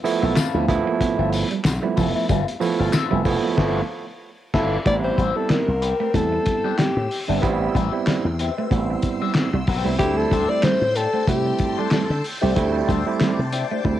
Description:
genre	funk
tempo	93 BPM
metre	4/4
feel	swing 56% on 16ths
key	unclear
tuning	A4 = 438 Hz
part	electric guitar at the edge of break-up	accompaniment	0.0-13.9 s	C4 to G5	-30 LUFS	left 10 dB	wah, spring reverb, cassette tape
part	semi-hollow electric guitar	riff	0.0-14.0 s	F3 to B3	-28 LUFS	right 7 dB	cassette tape
part	overdriven tine electric piano	stabs	0.0-14.0 s	F3 to A4	-24 LUFS	right 6 dB	cassette tape, tape echo
part	cloth-damped thuddy drum kit	drums	0.1-14.0 s	crash cymbal, handclaps, hi-hat, kick drum, snare drum	-24 LUFS	left 1 dB	none
part	tambourine	percussion	0.1-3.4 s	none	-37 LUFS	left 12 dB	none
part	slap bass with an envelope filter	bass	0.2-14.0 s	F1 to D3	-24 LUFS	left 1 dB	none
part	breathy alto saxophone	melody	4.9-12.2 s	G4 to D5	-22 LUFS	left 2 dB	none
part	phased string machine	sustained chords	4.9-14.0 s	G5 to E6	-35 LUFS	left 1 dB	ensemble chorus, phaser, cassette tape
room	light reverb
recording	home recording on cassette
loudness	-18 LUFS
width	side -12 dB against mid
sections	0.0-4.9 A section; 4.9-14.0 B section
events	band accent 3.6-4.9; drum fill 13.8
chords	0.0 G13; 4.9 Am9; 10.0 D9sus4

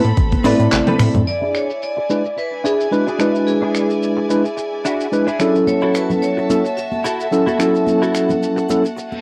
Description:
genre	nu-disco, nu disco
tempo	109 BPM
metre	4/4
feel	swing 54% on 16ths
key	E mixolydian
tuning	A4 = 440 Hz
part	clear chamber violin section	sustained chords	0.0-9.2 s	C4 to B5	-30 LUFS	equal	sidechain pumping, cassette tape
part	chorused synth bass	bass	0.0-1.2 s	A1 to A2	-20 LUFS	equal	none
part	dusty soul sampler-style drum kit	drums	0.0-9.1 s	finger snaps, handclaps, hi-hat, shaker, toms	-27 LUFS	equal	overdrive, low-pass filter on hats, cassette tape, low-pass filter on snare, low-pass filter on toms, low-pass filter on perc, low-pass filter on room
part	cabasa and congas	percussion	0.0-1.2, 5.7-9.2 s	none	-28 LUFS	equal	none
part	tine electric piano	accompaniment	0.4-8.8 s	F#3 to D5	-19 LUFS	equal	medium tremolo, sidechain pumping, cassette tape
part	direct-recorded clean electric guitar	riff	0.4-9.0 s	C4 to B4	-24 LUFS	equal	ensemble chorus, low-pass filter, cassette tape
part	vibraphone with hard mallets	melody	1.3-9.2 s	F#4 to E5	-26 LUFS	equal	cassette tape, analog delay
part	reverse cymbal	sound effects	9.1-9.2 s	none	-37 LUFS	equal	none
room	moderate booth ambience, RT60 0.2 s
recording	home recording on cassette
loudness	-17 LUFS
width	mono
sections	0.0-1.3 A section; 1.3-9.2 B section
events	drum fill 0.7-1.3; band accent 0.7; filter sweep on clean electric guitar 1.3-9.2; reverse cymbal 9.1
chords	0.0 Amadd9; 1.3 E7; 5.7 F#m7

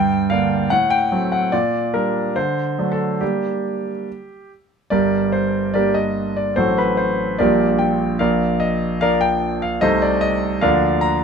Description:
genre	classical-period piano sonatina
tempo	74 BPM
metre	2/4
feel	rubato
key	G minor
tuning	A4 = 440 Hz
part	clear concert grand piano	solo	0.0-11.2 s	G1 to Bb5	-16 LUFS	equal	none
room	light reverb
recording	minimal, uncompressed stereo recording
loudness	-16 LUFS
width	side -6 dB against mid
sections	0.0-4.9 A section; 4.9-11.2 B section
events	none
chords	0.0 Gm; 0.7 F#dim/A; 1.5 Gm/Bb; 2.4 D7; 3.2 Gm; 6.6 F#dim/A; 7.4 Gm/Bb; 8.2 Bb; 9.8 Adim/C; 10.6 Bb/D

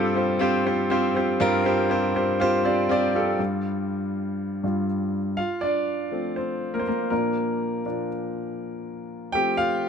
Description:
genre	pop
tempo	121 BPM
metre	4/4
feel	straight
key	F major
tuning	A4 = 441 Hz
part	clear grand piano	solo	0.0-9.9 s	G2 to G5	-22 LUFS	equal	none
room	light reverb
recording	none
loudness	-22 LUFS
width	side -7 dB against mid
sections	0.0-3.4 A section; 3.4-5.4 B section; 5.4-9.9 C section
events	grand piano solo 3.4-5.4, 5.4-9.9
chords	0.0 Csus4/G; 3.4 Fsus2/G; 5.4 F; 7.1 Bb; 9.3 Fadd9

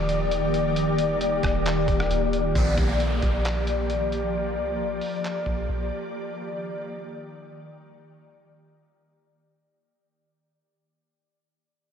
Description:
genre	hip hop, atmospheric cloud-rap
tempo	134 BPM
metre	4/4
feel	half-time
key	unclear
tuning	A4 = 443 Hz
part	ethereal airy pad	sustained chords	0.0-9.7 s	Eb3 to D5	-26 LUFS	left 2 dB	ensemble chorus, built-in reverb
part	soft 808-style bass	bass	0.0-5.9 s	D1 to C2	-28 LUFS	equal	none
part	wind-like tuned noise texture	texture	0.0-9.7 s	G3 to D5	-37 LUFS	right 1 dB	built-in reverb
part	lo-fi sampler-style drum kit	drums	0.1-5.6 s	handclaps, hi-hat, kick drum, rim click	-30 LUFS	equal	none
part	downlifter	sound effects	2.6-6.1 s	none	-35 LUFS	equal	none
room	wet cathedral reverb, RT60 5.6 s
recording	dreamy mix soaked in reverb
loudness	-23 LUFS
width	side -8 dB against mid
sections	0.0-2.6 A section; 2.6-9.7 B section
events	fade-out 2.6-9.7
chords	0.0 Ebmaj7; 2.6 Bb6; 6.1 Ebmaj7

